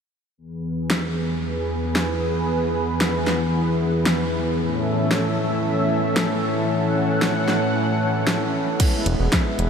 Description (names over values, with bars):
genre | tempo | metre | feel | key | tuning
synthwave | 114 BPM | 4/4 | straight | E major | A4 = 440 Hz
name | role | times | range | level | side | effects
lush unison pad | sustained chords | 0.4-9.7 s | E2 to F#5 | -21 LUFS | equal | chorus
pop drum kit | drums | 0.9-9.7 s | crash cymbal, hi-hat, snare drum | -25 LUFS | equal | none
electronic kick drum | drums | 8.8-9.4 s | none | -20 LUFS | equal | none
fat analog bass | bass | 9.1-9.7 s | E1 | -20 LUFS | equal | none
room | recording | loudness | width
wet huge ambient reverb, RT60 7.9 s | dreamy mix soaked in reverb | -19 LUFS | side -6 dB against mid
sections
0.4-8.8 A section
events
filter sweep on analog synth pad 0.4-8.8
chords
0.4 E; 4.6 A; 8.8 E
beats
| 0.38 0.90 1.43 1.96 | 2.48 3.01 3.54 4.06 | 4.59 5.11 5.64 6.17 | 6.69 7.22 7.75 8.27 | 8.80 9.32